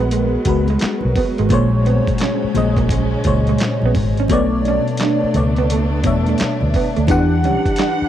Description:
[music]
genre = R&B, neo-soul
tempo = 86 BPM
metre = 4/4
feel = swing 63% on 16ths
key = unclear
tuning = A4 = 443 Hz
[part]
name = electric guitar through a small old amp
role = second line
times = 0.0-7.9 s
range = G#3 to D4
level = -23 LUFS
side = right 8 dB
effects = slapback echo
[part]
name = FM electric piano with soft pad layer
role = accompaniment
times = 0.0-8.1 s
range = A#2 to F#5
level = -18 LUFS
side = left 2 dB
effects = chorus, tremolo
[part]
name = dark studio string section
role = sustained chords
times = 0.0-8.1 s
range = B2 to F#5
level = -25 LUFS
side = right 1 dB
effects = none
[part]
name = vintage muted fingered electric bass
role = bass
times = 0.0-8.0 s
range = G#1 to E2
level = -19 LUFS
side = equal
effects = none
[part]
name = dusty soul sampler-style drum kit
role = drums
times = 0.1-8.0 s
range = handclaps, hi-hat, kick drum, snare drum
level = -21 LUFS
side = equal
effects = overdrive
[part]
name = congas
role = percussion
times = 0.1-7.6 s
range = none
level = -30 LUFS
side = right 4 dB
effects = none
[sound]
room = light reverb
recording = dry, close 1970s-style studio recording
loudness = -14 LUFS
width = side -11 dB against mid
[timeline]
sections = 0.0-8.1 A section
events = none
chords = 0.0 G#m9; 1.5 A#m9; 4.3 Bm9; 7.1 Em9

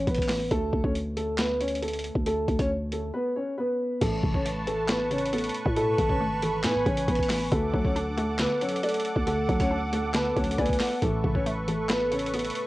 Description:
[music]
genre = hip hop, trap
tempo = 137 BPM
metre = 4/4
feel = half-time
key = A major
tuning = A4 = 440 Hz
[part]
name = dark grand piano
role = melody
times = 0.0-12.7 s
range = A3 to C#5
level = -28 LUFS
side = equal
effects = cassette tape
[part]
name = growling 808-style bass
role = bass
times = 0.0-12.5 s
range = G#1 to A2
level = -30 LUFS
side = equal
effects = none
[part]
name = boom bap sampler-style drum kit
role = drums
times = 0.1-12.7 s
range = crash cymbal, handclaps, hi-hat, kick drum, snare drum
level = -30 LUFS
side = equal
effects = cassette tape
[part]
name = hollow square pluck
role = accompaniment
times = 4.0-12.7 s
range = A2 to D5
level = -33 LUFS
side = left 1 dB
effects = chorus, cassette tape
[part]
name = warm analog pad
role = sustained chords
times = 4.0-12.7 s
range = A4 to D6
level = -34 LUFS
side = right 1 dB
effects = chorus, tremolo, cassette tape
[part]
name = reedy jazz flute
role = second line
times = 5.8-11.0 s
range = F#5 to A5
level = -34 LUFS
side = right 3 dB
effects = cassette tape, tape echo
[sound]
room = light reverb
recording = home recording on cassette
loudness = -24 LUFS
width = side -18 dB against mid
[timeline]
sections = 0.0-4.0 A section; 4.0-12.7 B section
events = drums muted 3.1-4.0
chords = 0.0 Asus2; 0.5 D5; 4.0 Aadd9; 7.5 D; 11.0 Aadd9

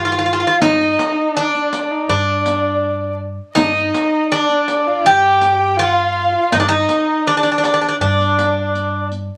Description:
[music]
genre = Turkish makam ensemble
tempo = 81 BPM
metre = 4/4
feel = straight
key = unclear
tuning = A4 = 440 Hz
[part]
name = Greek bouzouki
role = melody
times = 0.0-9.1 s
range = D4 to G4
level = -18 LUFS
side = equal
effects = none
[part]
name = dark kamancheh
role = second line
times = 0.0-9.1 s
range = D4 to G4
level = -23 LUFS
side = equal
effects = none
[part]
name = warm symphonic violin section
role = second line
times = 0.0-9.1 s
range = D5 to G5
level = -25 LUFS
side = equal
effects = none
[part]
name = upright bass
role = bass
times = 0.0-9.3 s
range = G2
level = -26 LUFS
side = equal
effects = none
[part]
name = riq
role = percussion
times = 0.6-9.2 s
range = none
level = -28 LUFS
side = equal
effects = none
[sound]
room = moderate studio reverb, RT60 0.8 s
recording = vinyl crackle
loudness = -16 LUFS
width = mono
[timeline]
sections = 0.0-9.4 A section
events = none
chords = none

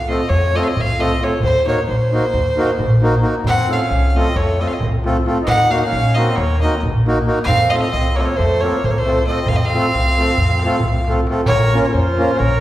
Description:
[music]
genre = balkan folk, Balkan wedding band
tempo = 268 BPM (eighths)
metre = 9/8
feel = straight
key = F phrygian dominant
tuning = A4 = 438 Hz
[part]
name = rich fiddle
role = melody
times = 0.0-12.6 s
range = C5 to Gb5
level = -19 LUFS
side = equal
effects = none
[part]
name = upright bass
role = bass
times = 0.0-12.6 s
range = Bb1 to F2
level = -19 LUFS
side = equal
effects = none
[part]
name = accordion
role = accompaniment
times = 0.1-12.3 s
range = A3 to Bb4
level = -20 LUFS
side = equal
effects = none
[part]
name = darbuka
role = percussion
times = 0.1-12.5 s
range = none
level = -22 LUFS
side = right 1 dB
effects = none
[part]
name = mellow trumpet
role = second line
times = 3.5-12.6 s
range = A3 to Bb4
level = -25 LUFS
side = right 2 dB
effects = none
[sound]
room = wet recital hall reverb, RT60 1.7 s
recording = heard from further back in the room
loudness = -14 LUFS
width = side -14 dB against mid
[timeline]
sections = 0.0-11.5 A section; 11.5-12.6 B section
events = none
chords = 0.0 F; 1.4 Ebm; 3.4 F; 5.5 Ebm; 7.5 F; 11.5 Bbm

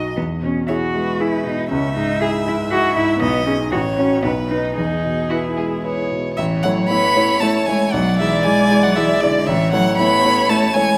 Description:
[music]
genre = quick classical-period movement for piano quartet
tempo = 116 BPM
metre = 3/4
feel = rubato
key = E major, A major from 6.4 s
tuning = A4 = 440 Hz
[part]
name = clear violin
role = melody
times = 0.0-11.0 s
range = G#4 to B5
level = -24 LUFS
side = equal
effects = none
[part]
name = clear grand piano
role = accompaniment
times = 0.0-11.0 s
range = A1 to D5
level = -22 LUFS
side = equal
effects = none
[part]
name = warm cello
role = second line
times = 0.2-11.0 s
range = D3 to G#4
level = -23 LUFS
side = equal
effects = none
[part]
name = rich violin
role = second line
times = 0.7-11.0 s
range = F#4 to E5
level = -26 LUFS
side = equal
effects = none
[sound]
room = wet recital hall reverb, RT60 1.6 s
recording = none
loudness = -18 LUFS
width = mono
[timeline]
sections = 0.0-6.4 A section; 6.4-11.0 B section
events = none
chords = 0.2 E; 1.7 C#m; 3.2 G#m/B; 3.7 F#m/A; 4.2 B; 4.8 E; 6.4 A; 7.9 E7/B; 9.5 A

